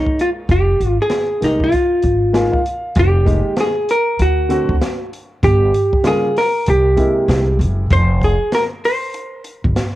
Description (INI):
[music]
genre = hip hop, jazz-hop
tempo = 97 BPM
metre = 4/4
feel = swing 61% on 16ths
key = F minor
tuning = A4 = 443 Hz
[part]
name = vintage hollow-body jazz guitar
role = melody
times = 0.0-9.4 s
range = Eb4 to C5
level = -16 LUFS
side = equal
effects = cassette tape
[part]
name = dark grand piano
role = accompaniment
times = 0.0-7.9 s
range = C3 to Ab5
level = -21 LUFS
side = left 1 dB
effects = cassette tape
[part]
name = open jazz drum kit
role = drums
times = 0.1-9.9 s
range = hi-hat, kick drum, snare drum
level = -21 LUFS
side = equal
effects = cassette tape
[part]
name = upright bass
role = bass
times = 0.5-9.8 s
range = F1 to D2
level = -16 LUFS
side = equal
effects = none
[sound]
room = light reverb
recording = home recording on cassette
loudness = -13 LUFS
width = side -15 dB against mid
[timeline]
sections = 0.0-3.0 A section; 3.0-10.0 B section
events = grand piano fill 2.0-3.0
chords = 0.0 Fm11; 4.2 D7; 5.4 Gm7b5; 6.7 C7b13; 7.9 F5